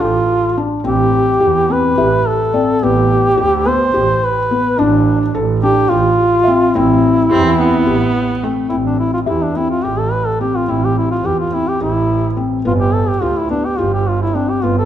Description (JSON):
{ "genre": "contemporary instrumental, chamber music in an uneven meter", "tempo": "214 BPM (eighths)", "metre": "7/8", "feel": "straight", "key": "A minor", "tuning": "A4 = 440 Hz", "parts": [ { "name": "warm duduk", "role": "melody", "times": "0.0-14.9 s", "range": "D4 to C5", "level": "-15 LUFS", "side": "equal", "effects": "none" }, { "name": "felt-muted upright piano", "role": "arpeggios", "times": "0.0-14.9 s", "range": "B3 to A4", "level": "-18 LUFS", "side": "left 3 dB", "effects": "none" }, { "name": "clear double bass", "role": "bass", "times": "0.0-14.9 s", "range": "G1 to E2", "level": "-19 LUFS", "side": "right 4 dB", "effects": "none" }, { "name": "worn celesta", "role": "texture", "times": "2.0-3.1, 6.4-10.3 s", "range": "D5 to E5", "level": "-25 LUFS", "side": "left 6 dB", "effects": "none" }, { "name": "warm viola", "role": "second line", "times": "7.3-8.7 s", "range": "A3 to C4", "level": "-18 LUFS", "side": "right 2 dB", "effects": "none" } ], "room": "moderate concert hall reverb, RT60 1.8 s", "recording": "minimal, uncompressed stereo recording", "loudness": "-12 LUFS", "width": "side -10 dB against mid", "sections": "0.0-8.7 A section; 8.7-14.9 B section", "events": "none", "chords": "0.0 F6/A; 0.8 Am7; 2.8 G/A; 4.8 Dsus4/A; 6.7 Am7; 12.6 G7", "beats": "0.01 0.29 0.57 | 0.85 1.13 1.41 1.69 1.97 2.25 2.53 | 2.81 3.10 3.38 3.66 3.94 4.22 4.50 | 4.78 5.06 5.34 5.62 5.90 6.18 6.46 | 6.74 7.03 7.31 7.59 7.87 8.15 8.43 | 8.71 8.99 9.27 9.55 9.83 10.12 10.40 | 10.68 10.96 11.24 11.52 11.80 12.09 12.37 | 12.65 12.93 13.21 13.49 13.77 14.05 14.34 | 14.62" }